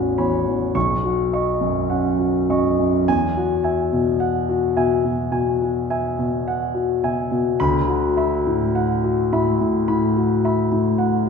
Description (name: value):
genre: classical, impressionist solo piano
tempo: 53 BPM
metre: 4/4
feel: rubato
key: unclear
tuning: A4 = 437 Hz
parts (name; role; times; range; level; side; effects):
- warm concert grand piano; solo; 0.0-11.3 s; A1 to C#6; -18 LUFS; left 1 dB; none
room: wet recital hall reverb, RT60 1.3 s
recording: recorded in a church or concert hall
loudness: -18 LUFS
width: side -5 dB against mid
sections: 0.0-11.3 A section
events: none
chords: 0.0 A69; 0.8 Badd9; 3.1 Eadd9; 7.6 D69